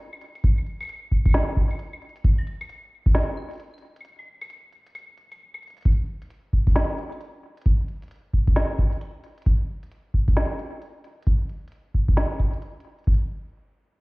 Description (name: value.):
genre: IDM.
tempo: 133 BPM.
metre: 4/4.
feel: swing 62% on 16ths.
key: none.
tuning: none.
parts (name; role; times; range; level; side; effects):
organic electronic drum kit; drums; 0.1-13.2 s; claves, hi-hat, snare drum; -30 LUFS; equal; digital delay.
electronic kick drum; drums; 0.4-3.1, 5.9-13.2 s; none; -20 LUFS; equal; none.
room: little or no reverb.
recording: heard muffled through a wall, stone room reverb, EQ.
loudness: -21 LUFS.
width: side -26 dB against mid.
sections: 0.0-5.9 A section; 5.9-13.1 B section.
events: break 4.0-5.9.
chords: none.